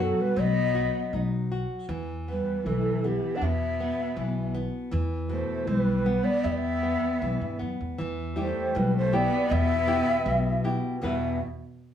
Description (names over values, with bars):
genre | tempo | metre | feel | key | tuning
fado-style ballad | 79 BPM | 2/4 | rubato | E minor | A4 = 440 Hz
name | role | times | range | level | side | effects
breathy mellow shakuhachi | melody | 0.0-11.4 s | G4 to F#5 | -29 LUFS | left 1 dB | none
dark cello | second line | 0.0-11.4 s | B2 to D4 | -30 LUFS | right 3 dB | none
nylon-string guitar | accompaniment | 0.0-11.4 s | E2 to B4 | -31 LUFS | left 1 dB | none
upright bass | bass | 0.0-11.4 s | B1 to G2 | -30 LUFS | left 1 dB | none
room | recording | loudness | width
moderate studio reverb, RT60 0.6 s | band playing live in one room, small room reverb | -24 LUFS | side -9 dB against mid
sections
0.0-8.0 A section; 8.0-11.0 B section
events
none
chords
0.0 B; 1.9 Em